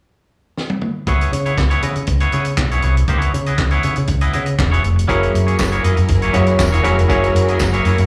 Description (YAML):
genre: disco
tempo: 119 BPM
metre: 4/4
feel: straight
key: C# dorian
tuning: A4 = 440 Hz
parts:
  - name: warm soul drum kit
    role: drums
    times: 0.6-8.1 s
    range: handclaps, hi-hat, kick drum, snare drum, toms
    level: -24 LUFS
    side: equal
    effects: none
  - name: twangy electric guitar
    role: accompaniment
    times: 1.1-8.0 s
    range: A#3 to D#5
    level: -24 LUFS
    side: equal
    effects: plate reverb, slapback echo
  - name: fingered electric bass with an envelope filter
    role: bass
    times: 1.1-8.1 s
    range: E1 to C#3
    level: -19 LUFS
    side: equal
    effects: none
  - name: overdriven clav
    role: accompaniment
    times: 5.1-7.7 s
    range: F#3 to C#5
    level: -21 LUFS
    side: equal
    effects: plate reverb, slapback echo
  - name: clear studio string section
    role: sustained chords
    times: 5.1-8.1 s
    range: F#3 to A#4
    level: -25 LUFS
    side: equal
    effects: plate reverb
  - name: tambourine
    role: percussion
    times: 5.6-7.7 s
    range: none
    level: -34 LUFS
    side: equal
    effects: none
room: light reverb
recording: live gig heard through the venue's PA, club reverb, small room ambience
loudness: -16 LUFS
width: mono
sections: 0.0-1.1 A section; 1.1-8.1 B section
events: drum fill 0.6-1.1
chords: 0.0 N.C.; 1.1 C#m7; 5.1 F#9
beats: 0.06 0.57 | 1.07 1.57 2.08 2.58 | 3.08 3.58 4.09 4.59 | 5.09 5.59 6.10 6.60 | 7.10 7.60